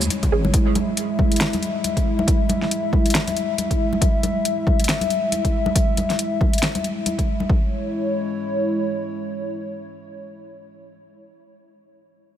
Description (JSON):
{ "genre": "deep dubstep", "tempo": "138 BPM", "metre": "4/4", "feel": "swing 58% on 16ths, half-time", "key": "C# minor", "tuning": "A4 = 440 Hz", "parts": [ { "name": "dark analog pad", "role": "sustained chords", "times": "0.0-10.8 s", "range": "G#3 to E5", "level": "-24 LUFS", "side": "equal", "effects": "chorus" }, { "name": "deep soft wobble bass", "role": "bass", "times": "0.0-0.5 s", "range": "G#1", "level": "-22 LUFS", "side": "equal", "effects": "chorus" }, { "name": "deep house drum kit", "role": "drums", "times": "0.0-7.3 s", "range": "hi-hat, shaker, snare drum", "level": "-25 LUFS", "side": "left 1 dB", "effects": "overdrive" }, { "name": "congas", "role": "percussion", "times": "0.1-7.5 s", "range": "none", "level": "-28 LUFS", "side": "left 3 dB", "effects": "dub echo" }, { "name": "electronic kick drum", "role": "drums", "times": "0.2-7.6 s", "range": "none", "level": "-20 LUFS", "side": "equal", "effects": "none" }, { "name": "filtered dub chord stab", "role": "stabs", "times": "0.3-0.5 s", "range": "E3 to G#4", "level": "-29 LUFS", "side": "right 5 dB", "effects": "phaser, dub echo" } ], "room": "light reverb, digital ambience", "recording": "none", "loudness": "-19 LUFS", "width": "side -10 dB against mid", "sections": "0.0-7.5 A section; 7.5-11.0 B section", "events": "none", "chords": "0.0 C#m" }